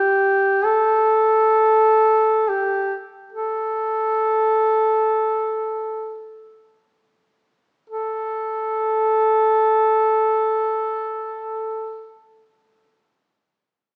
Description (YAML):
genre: caucasian folk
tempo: free time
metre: none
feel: none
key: unclear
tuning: A4 = 439 Hz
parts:
  - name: mellow duduk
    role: solo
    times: 0.0-12.1 s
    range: G4 to A4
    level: -20 LUFS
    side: equal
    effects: none
room: moderate recital hall reverb, RT60 1.7 s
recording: recorded in a church or concert hall, small speaker sound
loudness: -20 LUFS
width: mono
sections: 0.0-7.9 A section; 7.9-13.5 B section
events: slowing down 0.0-7.9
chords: none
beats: free time